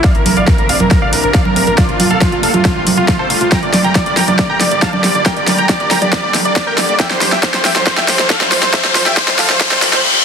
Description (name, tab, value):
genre	uplifting trance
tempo	138 BPM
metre	4/4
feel	straight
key	F major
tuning	A4 = 443 Hz
part	dense compressed supersaw	melody	0.0-10.0 s	F4 to Bb5	-16 LUFS	right 1 dB	cassette tape, sidechain pumping, low-pass filter, digital delay
part	big-room dance drum kit	drums	0.0-10.0 s	congas, hi-hat, snare drum	-14 LUFS	right 1 dB	overdrive, small room ambience
part	electronic kick drum	drums	0.0-9.7 s	none	-15 LUFS	equal	overdrive, small room ambience
part	tight sequencer bass	bass	0.1-10.0 s	F1 to C2	-27 LUFS	equal	sidechain pumping
part	riser and reverse cymbal	sound effects	5.8-10.2 s	none	-18 LUFS	left 4 dB	none
room	light reverb, digital ambience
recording	dense, heavily limited modern master, high-pass filter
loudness	-10 LUFS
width	side -7 dB against mid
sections	0.0-10.2 A section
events	build-up 0.0-10.2; drum fill 0.0-10.0; filter sweep 0.0-10.2; riser 5.8-10.2; reverse cymbal 9.6-10.2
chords	0.0 Bbadd9; 1.8 Fadd9; 3.5 Gm; 7.0 Fadd9